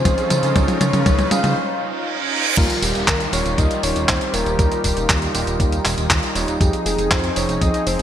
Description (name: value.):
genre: italo disco.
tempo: 119 BPM.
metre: 4/4.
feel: straight.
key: unclear.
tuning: A4 = 441 Hz.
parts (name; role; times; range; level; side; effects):
soft octave-layered synth lead; melody; 0.0-8.0 s; F4 to F5; -24 LUFS; left 2 dB; chorus, vintage 12-bit sampler grit, digital delay, shimmer reverb.
warm analog pad; sustained chords; 0.0-8.0 s; Eb3 to Ab4; -26 LUFS; equal; chorus, shimmer reverb.
overdriven tine electric piano; stabs; 0.0-8.0 s; F3 to Db5; -27 LUFS; right 4 dB; shimmer reverb.
chorused synth bass; bass; 0.0-8.0 s; Eb1 to Db3; -24 LUFS; equal; tube saturation.
riser, reverse cymbal and downlifter; sound effects; 0.0-6.6 s; none; -26 LUFS; right 3 dB; none.
clean 12-bit digital drum machine; drums; 0.1-8.0 s; crash cymbal, handclaps, hi-hat, tambourine, toms; -21 LUFS; equal; gated reverb.
electronic kick drum; drums; 0.1-7.7 s; none; -20 LUFS; equal; none.
room: moderate lush hall reverb, RT60 2.2 s.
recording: bright 1980s-style digital production.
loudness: -16 LUFS.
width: side -10 dB against mid.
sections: 0.0-2.6 A section; 2.6-8.0 B section.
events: drum fill 0.0-1.6; riser 0.0-1.6; filter sweep on soft synth lead 0.0-2.6; break 1.6-2.6; reverse cymbal 1.6-2.6.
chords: 0.0 Dbadd9; 2.6 Ebadd9; 6.6 Fm7.